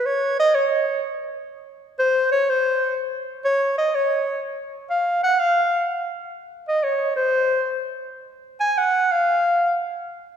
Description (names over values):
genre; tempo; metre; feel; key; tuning
jazz; free time; none; none; F minor; A4 = 440 Hz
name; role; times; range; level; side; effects
clear clarinet; solo; 0.0-9.7 s; C5 to Ab5; -19 LUFS; equal; none
room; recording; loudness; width
wet concert hall reverb, RT60 2.3 s; recorded in a church or concert hall; -19 LUFS; side -8 dB against mid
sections
0.0-10.4 A section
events
none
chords
none